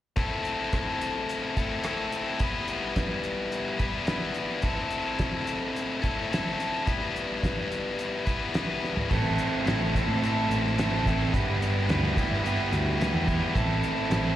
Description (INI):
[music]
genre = classic rock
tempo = 108 BPM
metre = 4/4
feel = straight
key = A minor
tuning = A4 = 440 Hz
[part]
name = tight distorted guitar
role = riff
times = 0.2-14.4 s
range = G3 to B4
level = -28 LUFS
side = left 3 dB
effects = distortion, slapback echo
[part]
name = cloth-damped thuddy drum kit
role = drums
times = 0.2-14.2 s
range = crash cymbal, hi-hat, kick drum, rim click, snare drum, toms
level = -30 LUFS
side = equal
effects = none
[part]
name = crunchy overdriven guitar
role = riff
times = 9.1-14.4 s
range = A2 to A4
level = -30 LUFS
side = right 9 dB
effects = slapback echo
[part]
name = hollow-body short-scale picked electric bass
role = bass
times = 9.1-14.4 s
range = G1 to A2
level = -27 LUFS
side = equal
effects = none
[sound]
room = light reverb, small room ambience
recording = live gig heard through the venue's PA, recital hall reverb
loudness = -25 LUFS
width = side -12 dB against mid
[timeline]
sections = 0.2-9.1 A section; 9.1-14.4 B section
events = drum fill 8.8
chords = 0.2 Am; 2.4 Em/G; 4.7 Am; 6.9 Em/G; 9.1 Am; 11.3 Em/G; 13.6 Am